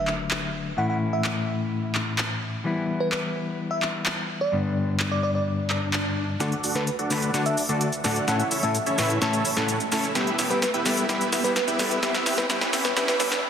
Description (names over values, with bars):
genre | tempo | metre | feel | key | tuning
EDM, festival progressive house | 128 BPM | 4/4 | straight | D major | A4 = 440 Hz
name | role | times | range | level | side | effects
bell-like FM electric piano | melody | 0.0-13.4 s | B4 to F#5 | -30 LUFS | right 1 dB | chorus, phaser, tape echo
mellow electric guitar | accompaniment | 0.0-13.3 s | G2 to B4 | -27 LUFS | left 2 dB | harmonic tremolo, tape echo
sub drop, swell and riser | sound effects | 0.0-0.8, 5.6-13.4 s | none | -36 LUFS | right 1 dB | none
big-room dance drum kit | drums | 0.1-13.4 s | handclaps, hi-hat, shaker, snare drum | -27 LUFS | equal | high-pass filter on hats, high-pass filter on perc, high-pass filter on cymbals, high-pass filter on snare, high-pass filter on toms, high-pass filter on room
dense compressed supersaw | riff | 6.4-13.4 s | B3 to A5 | -27 LUFS | right 1 dB | low-pass filter, tape echo
saturated sub bass | bass | 6.4-13.4 s | E1 to E2 | -41 LUFS | equal | none
room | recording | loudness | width
moderate huge ambient reverb, RT60 4.0 s | dense, heavily limited modern master, high-pass filter | -22 LUFS | side -8 dB against mid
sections
0.0-6.4 A section; 6.4-13.5 B section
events
impact 0.0-0.8; swell 5.6-6.4; build-up 6.4-13.5; drum fill 6.4-13.4; filter sweep on supersaw synth 6.4-13.5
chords
0.0 D; 0.8 A; 2.7 Em; 4.5 G; 6.4 D; 8.3 A; 10.2 Em; 12.0 G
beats
0.31 | 0.78 1.25 1.72 2.19 | 2.65 3.12 3.59 4.06 | 4.53 5.00 5.47 5.93 | 6.40 6.87 7.34 7.81 | 8.28 8.75 9.22 9.69 | 10.15 10.62 11.09 11.56 | 12.03 12.50 12.97 13.44